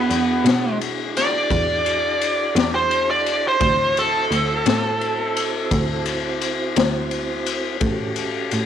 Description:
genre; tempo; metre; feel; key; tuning
slow blues; 57 BPM (dotted quarters); 12/8; straight; unclear; A4 = 440 Hz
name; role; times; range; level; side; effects
smooth overdriven lead guitar; melody; 0.0-6.0 s; B3 to D5; -20 LUFS; right 2 dB; none
mellow tonewheel organ; sustained chords; 0.0-8.7 s; C4 to C5; -28 LUFS; right 2 dB; slow rotary speaker
rich cello; bass; 0.0-8.7 s; D2 to B2; -26 LUFS; right 1 dB; none
raw garage drum kit; drums; 0.1-8.7 s; kick drum, ride cymbal, snare drum; -23 LUFS; left 6 dB; none
room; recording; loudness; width
light reverb, studio ambience; 1960s-style stereo; -18 LUFS; side -9 dB against mid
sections
0.0-8.7 A section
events
lead electric guitar solo 0.0-8.7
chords
0.0 E9; 3.6 D9; 7.8 A6

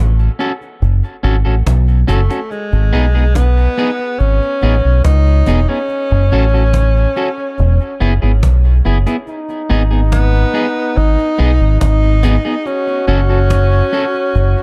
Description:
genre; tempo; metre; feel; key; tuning
roots reggae; 71 BPM; 4/4; straight; unclear; A4 = 440 Hz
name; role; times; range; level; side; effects
warm tenor saxophone; melody; 0.0-14.6 s; G#3 to D#4; -21 LUFS; equal; tape echo
deep dub fingered electric bass; bass; 0.0-14.5 s; E1 to C#2; -14 LUFS; equal; none
cajon; drums; 0.2-14.6 s; none; -25 LUFS; equal; none
electric guitar at the edge of break-up; accompaniment; 0.4-14.0 s; B3 to A4; -24 LUFS; equal; tape echo
brilliant trombone; second line; 9.3-14.6 s; D#4 to F#4; -25 LUFS; equal; tape echo
room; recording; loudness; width
small room ambience; dark, warm production; -14 LUFS; mono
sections
0.0-9.3 A section; 9.3-14.6 B section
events
none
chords
0.0 F#m; 2.5 G#m; 5.9 F#m; 7.6 E; 9.3 G#m; 12.7 F#m

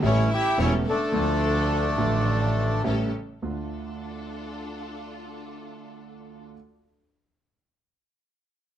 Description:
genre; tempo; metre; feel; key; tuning
tango; 107 BPM; 4/4; rubato; D harmonic minor; A4 = 440 Hz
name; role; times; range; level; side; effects
warm studio violin section; second line; 0.0-2.8 s; A4 to E5; -32 LUFS; left 2 dB; none
warm concert grand piano; accompaniment; 0.0-6.5 s; E1 to F4; -29 LUFS; right 1 dB; none
clear symphonic string section; stabs; 0.0-6.4 s; C#4 to A4; -38 LUFS; left 2 dB; none
rich double bass; bass; 0.0-3.7 s; E1 to D2; -27 LUFS; right 1 dB; none
bandoneon; melody; 0.1-2.8 s; A3 to G4; -25 LUFS; left 1 dB; none
room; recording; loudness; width
moderate studio reverb, RT60 0.8 s; dark, warm production; -22 LUFS; side -10 dB against mid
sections
0.0-3.4 A section; 3.4-5.7 B section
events
none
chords
0.0 A7; 1.1 Dm; 2.9 A7; 3.4 Dm

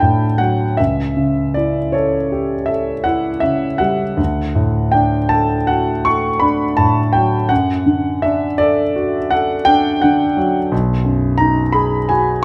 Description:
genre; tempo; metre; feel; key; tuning
classical, romantic nocturne for solo piano; 54 BPM (dotted quarters); 9/8; uneven beats, rubato; D major; A4 = 441 Hz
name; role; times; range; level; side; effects
warm concert grand piano; solo; 0.0-12.4 s; B1 to C#6; -16 LUFS; equal; none
room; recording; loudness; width
light reverb; close, detailed microphones; -16 LUFS; mono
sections
0.0-12.4 A section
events
none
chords
0.0 D; 0.8 A7/C#; 4.2 D; 7.5 D/F#; 10.7 B6

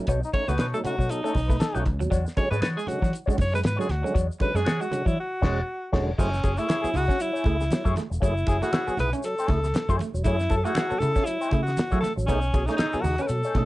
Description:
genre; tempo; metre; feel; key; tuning
funk; 118 BPM; 4/4; swing 56% on 16ths; F# dorian; A4 = 441 Hz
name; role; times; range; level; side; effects
electric guitar at the edge of break-up; riff; 0.0-13.6 s; F#3 to C#4; -35 LUFS; right 5 dB; none
tonewheel organ; stabs; 0.0-13.7 s; B2 to G#4; -32 LUFS; right 2 dB; slow rotary speaker
electric guitar with an envelope filter; accompaniment; 0.1-13.6 s; G#3 to C#5; -33 LUFS; left 4 dB; wah, tremolo
vintage muted fingered electric bass; bass; 0.1-13.7 s; E1 to F#3; -27 LUFS; equal; none
cloth-damped thuddy drum kit; drums; 0.1-13.7 s; crash cymbal, hi-hat, kick drum, snare drum; -26 LUFS; equal; none
tube shaker; percussion; 0.1-13.5 s; none; -48 LUFS; left 4 dB; none
clear trombone; second line; 0.2-1.8, 6.4-13.0 s; D#4 to B4; -32 LUFS; left 3 dB; none
edgy alto saxophone; melody; 0.3-13.7 s; C#4 to C#5; -28 LUFS; equal; none
congas; percussion; 0.3-13.7 s; none; -37 LUFS; right 3 dB; none
room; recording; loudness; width
light reverb; nothing above 10.7 kHz; -22 LUFS; side -18 dB against mid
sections
0.0-6.2 A section; 6.2-13.7 B section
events
band accent 5.2-6.2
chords
0.0 B9; 2.1 E13; 6.2 F#m9; 12.3 B13

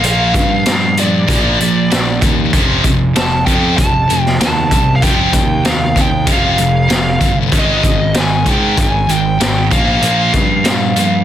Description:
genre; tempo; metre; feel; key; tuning
hard rock; 96 BPM; 4/4; straight; unclear; A4 = 440 Hz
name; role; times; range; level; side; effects
bluesy overdriven lead guitar; melody; 0.0-11.2 s; D5 to A5; -18 LUFS; right 1 dB; distortion, plate reverb, analog delay
high-gain distorted guitar; riff; 0.0-11.2 s; F2 to Bb3; -19 LUFS; right 10 dB; distortion
scooped high-gain guitar; riff; 0.0-11.2 s; F2 to Bb3; -18 LUFS; left 13 dB; distortion
fuzz picked electric bass; bass; 0.0-11.2 s; F1 to Ab2; -17 LUFS; equal; overdrive
raw garage drum kit; drums; 0.0-11.1 s; hi-hat, kick drum, snare drum; -16 LUFS; equal; none
room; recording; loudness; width
light reverb; dense, heavily limited modern master; -11 LUFS; side -11 dB against mid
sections
0.0-11.2 A section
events
none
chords
0.0 Bb; 2.5 F; 7.5 Ab5; 9.7 Bb5

